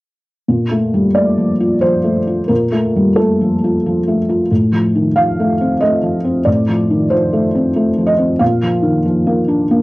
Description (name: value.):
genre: neoclassical minimalist piano.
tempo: 91 BPM.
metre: 3/4.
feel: rubato.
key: Bb major.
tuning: A4 = 440 Hz.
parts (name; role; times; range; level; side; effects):
felt-muted upright piano; solo; 0.5-9.8 s; A2 to F5; -12 LUFS; equal; none.
room: moderate studio reverb, RT60 0.5 s.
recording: home recording on cassette.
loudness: -12 LUFS.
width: side -20 dB against mid.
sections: 0.5-9.8 A section.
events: none.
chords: 0.5 Bbmaj7; 4.5 F/A; 8.4 Bb.